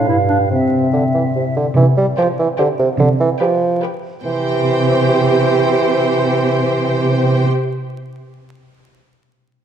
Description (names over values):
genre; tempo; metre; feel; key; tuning
cinematic, playful, whimsical film cue; 145 BPM; 3/4; straight; C major; A4 = 439 Hz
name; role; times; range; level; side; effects
large flute ensemble; second line; 0.0-1.5 s; E5 to F5; -21 LUFS; right 2 dB; none
mellow clarinet; second line; 0.0-1.3 s; C4 to E4; -19 LUFS; equal; none
mellow bassoon; accompaniment; 0.0-7.5 s; G2 to G3; -17 LUFS; right 2 dB; none
concert harp; arpeggios; 0.0-4.3 s; G2 to G4; -23 LUFS; left 4 dB; none
warm studio cello section; bass; 1.8-7.5 s; C3; -17 LUFS; right 2 dB; none
rich studio violin section; melody; 2.2-7.5 s; G5; -27 LUFS; left 3 dB; none
dark studio violin section; second line; 2.2-7.5 s; B4 to C5; -23 LUFS; left 4 dB; none
warm studio viola section; accompaniment; 2.2-7.5 s; G4; -21 LUFS; right 3 dB; none
room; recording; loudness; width
moderate scoring stage reverb, RT60 2.0 s; dark, warm production, vinyl crackle; -13 LUFS; side -9 dB against mid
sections
0.0-1.8 A section; 1.8-4.2 B section; 4.2-6.7 C section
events
none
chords
0.1 G5; 0.5 C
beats
0.08 | 0.50 0.93 1.35 | 1.77 2.18 2.59 | 3.00 3.41 3.83 | 4.25 4.66 5.07 | 5.48 5.89 6.30